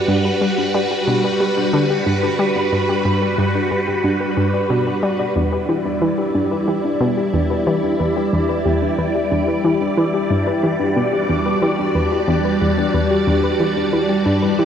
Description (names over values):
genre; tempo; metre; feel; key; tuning
ambient, sequencer-driven space music; 91 BPM; 4/4; straight; E minor; A4 = 440 Hz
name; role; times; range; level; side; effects
phased string machine; sustained chords; 0.0-14.7 s; G3 to D5; -19 LUFS; equal; ensemble chorus, phaser
thumb-piano-like synth pluck; arpeggios; 0.0-14.7 s; D4 to D5; -23 LUFS; left 2 dB; chorus, auto-pan, ping-pong delay
analog pluck; riff; 0.1-14.7 s; E2 to G3; -20 LUFS; equal; chorus, ping-pong delay
bubbling stepped-filter texture; texture; 6.8-14.7 s; D4 to D5; -34 LUFS; right 1 dB; none
room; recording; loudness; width
wet huge ambient reverb, RT60 8.3 s; worn, warbling old tape, cassette tape, warbly pitch drift; -16 LUFS; side -8 dB against mid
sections
0.0-5.4 A section; 5.4-14.7 B section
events
filter sweep on synth arpeggio sound 5.4-14.7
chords
0.0 Gmaj7; 5.4 Em7